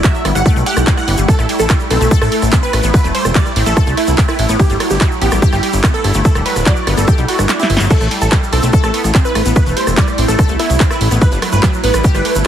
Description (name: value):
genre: psychedelic trance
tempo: 145 BPM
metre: 4/4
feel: straight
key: A minor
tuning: A4 = 440 Hz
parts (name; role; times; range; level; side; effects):
- supersaw stab; melody; 0.0-12.4 s; E4 to F#5; -20 LUFS; right 1 dB; phaser, sidechain pumping, ping-pong delay
- evolving wavetable pad; sustained chords; 0.0-12.5 s; A3 to E4; -21 LUFS; right 1 dB; ensemble chorus, built-in reverb, sidechain pumping
- wide unison pluck; riff; 0.0-12.3 s; F#3 to B4; -22 LUFS; left 1 dB; auto-pan, sidechain pumping, ping-pong delay
- electronic kick drum; drums; 0.0-12.1 s; none; -12 LUFS; equal; none
- techno drum kit; drums; 0.0-12.4 s; crash cymbal, handclaps, hi-hat, ride cymbal, rim click, snare drum; -20 LUFS; right 1 dB; none
- tube shaker; percussion; 0.0-12.5 s; none; -28 LUFS; right 2 dB; none
- fat analog bass; bass; 0.2-12.4 s; D1 to C2; -15 LUFS; equal; none
room: light reverb, digital ambience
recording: heavily compressed radio sound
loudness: -11 LUFS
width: side -10 dB against mid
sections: 0.0-12.5 A section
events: kick drops out 7.5-7.9; drum fill 7.5-7.9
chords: 0.0 G5; 1.3 A5; 4.6 G5; 7.9 A5; 11.2 G5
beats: 0.04 0.46 0.87 | 1.28 1.70 2.11 2.53 | 2.94 3.35 3.77 4.18 | 4.59 5.01 5.42 5.84 | 6.25 6.66 7.08 7.49 | 7.91 8.32 8.73 9.15 | 9.56 9.97 10.39 10.80 | 11.22 11.63 12.04 12.46